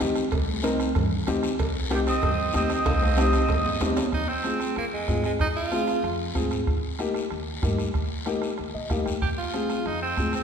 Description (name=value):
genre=latin, cumbia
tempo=189 BPM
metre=4/4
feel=straight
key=F minor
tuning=A4 = 441 Hz
part: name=dark upright piano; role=accompaniment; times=0.0-10.4 s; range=Bb3 to G5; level=-28 LUFS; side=left 2 dB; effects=none
part: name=upright bass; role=bass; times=0.0-10.4 s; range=C2 to Bb2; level=-30 LUFS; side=equal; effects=none
part: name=bombo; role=percussion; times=0.0-10.4 s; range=none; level=-30 LUFS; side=right 2 dB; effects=none
part: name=congas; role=percussion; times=0.0-10.3 s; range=none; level=-34 LUFS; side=left 4 dB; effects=none
part: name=cowbell and timbales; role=percussion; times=0.0-4.0 s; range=none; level=-34 LUFS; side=right 2 dB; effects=none
part: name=guiro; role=percussion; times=0.0-10.4 s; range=none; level=-38 LUFS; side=left 5 dB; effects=none
part: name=mellow accordion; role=melody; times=1.9-3.8 s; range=G4 to Eb5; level=-27 LUFS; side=right 2 dB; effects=none
part: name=edgy tenor saxophone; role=second line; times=1.9-6.2, 9.2-10.4 s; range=Eb3 to G4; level=-29 LUFS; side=right 3 dB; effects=none
room=wet recital hall reverb, RT60 1.5 s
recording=recorded in a church or concert hall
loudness=-23 LUFS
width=side -7 dB against mid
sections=0.0-4.1 A section; 4.1-10.4 B section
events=drum fill 2.9-4.1; tenor saxophone solo 4.1-10.4; upright piano fill 8.6-9.2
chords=0.0 Cm; 4.1 Fm; 6.7 Eb; 9.2 Fm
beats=0.01 | 0.33 0.64 0.96 1.28 | 1.59 1.91 2.23 2.55 | 2.86 3.18 3.50 3.82 | 4.13 4.45 4.77 5.09 | 5.41 5.72 6.04 6.36 | 6.68 7.00 7.32 7.63 | 7.95 8.27 8.59 8.90 | 9.22 9.54 9.86 10.18